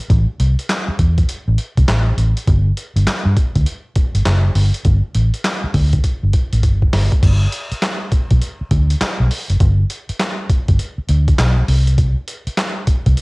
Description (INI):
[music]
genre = R&B, new jack swing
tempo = 101 BPM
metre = 4/4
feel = swing 64% on 16ths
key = unclear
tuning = A4 = 440 Hz
[part]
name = vintage muted fingered electric bass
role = bass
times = 0.1-13.1 s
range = F#1 to G2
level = -14 LUFS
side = equal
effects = tube saturation
[part]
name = boom bap sampler-style drum kit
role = drums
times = 0.1-13.2 s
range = crash cymbal, handclaps, hi-hat, kick drum, snare drum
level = -17 LUFS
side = equal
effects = none
[sound]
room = little or no reverb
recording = home recording on cassette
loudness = -14 LUFS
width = side -28 dB against mid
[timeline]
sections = 0.0-7.2 A section; 7.2-13.2 B section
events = drum fill 6.0-7.2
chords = none